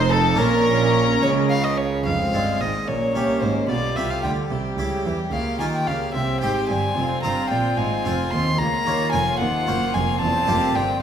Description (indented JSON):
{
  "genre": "classical, baroque-style concerto movement with solo episodes",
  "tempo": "73 BPM (dotted quarters)",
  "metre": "6/8",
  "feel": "straight",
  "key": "F minor",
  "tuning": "A4 = 440 Hz",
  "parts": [
    { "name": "warm chamber violin section", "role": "melody", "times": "0.0-11.0 s", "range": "F4 to C6", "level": "-32 LUFS", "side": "left 5 dB", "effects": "none" },
    { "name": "warm chamber violin section", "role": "second line", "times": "0.0-11.0 s", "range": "C4 to C5", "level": "-29 LUFS", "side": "left 2 dB", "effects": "none" },
    { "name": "dark chamber viola section", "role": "accompaniment", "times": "0.0-11.0 s", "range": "G3 to Eb4", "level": "-27 LUFS", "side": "right 1 dB", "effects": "none" },
    { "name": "harpsichord", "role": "accompaniment", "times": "0.0-11.0 s", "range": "Db2 to Db5", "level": "-28 LUFS", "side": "right 1 dB", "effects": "none" },
    { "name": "rich chamber double bass section", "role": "bass", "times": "0.0-11.0 s", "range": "E1 to E2", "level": "-27 LUFS", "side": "right 4 dB", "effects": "none" },
    { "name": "warm chamber cello section", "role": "bass", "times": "0.0-11.0 s", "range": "Db2 to E3", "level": "-28 LUFS", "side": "right 4 dB", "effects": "none" },
    { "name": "warm violin", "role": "melody", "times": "0.1-11.0 s", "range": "A4 to C6", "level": "-24 LUFS", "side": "left 1 dB", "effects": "none" }
  ],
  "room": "wet recital hall reverb, RT60 1.3 s",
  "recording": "minimal, uncompressed stereo recording",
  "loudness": "-19 LUFS",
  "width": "side -8 dB against mid",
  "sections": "0.0-2.1 A section; 2.1-11.0 B section",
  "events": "none",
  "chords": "0.4 Bbm; 2.1 Fm; 2.9 Gdim/Bb; 3.7 G7/B; 4.5 C; 5.3 Bbm/Db; 6.1 C5; 7.0 Fm; 8.6 Bbm/Db; 9.4 Cm7b5; 10.2 C7/E",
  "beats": "| 0.39 1.22 | 2.06 2.88 | 3.69 4.51 | 5.33 6.14 | 6.96 7.78 | 8.59 9.40 | 10.21"
}